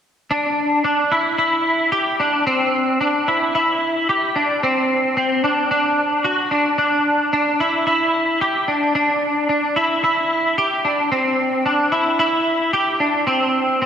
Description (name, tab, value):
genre	dream pop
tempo	111 BPM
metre	4/4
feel	straight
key	unclear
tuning	A4 = 440 Hz
part	clean electric guitar	solo	0.3-13.9 s	C4 to G4	-16 LUFS	equal	ensemble chorus, analog delay
room	wet lush hall reverb, RT60 2.7 s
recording	dreamy mix soaked in reverb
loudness	-16 LUFS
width	side -8 dB against mid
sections	0.3-13.9 A section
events	none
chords	none